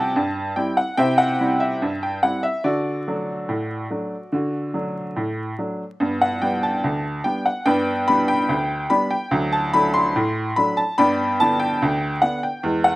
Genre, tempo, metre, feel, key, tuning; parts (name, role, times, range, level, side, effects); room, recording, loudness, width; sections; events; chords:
ragtime piano; 72 BPM; 2/4; straight; G major; A4 = 439 Hz
clear upright piano; solo; 0.0-13.0 s; D2 to C6; -19 LUFS; equal; slapback echo
little or no reverb; recorded outdoors, with no room sound, vinyl crackle; -19 LUFS; side -18 dB against mid
0.0-13.0 A section
0.0 C; 2.7 D; 6.0 G; 9.3 D; 11.0 G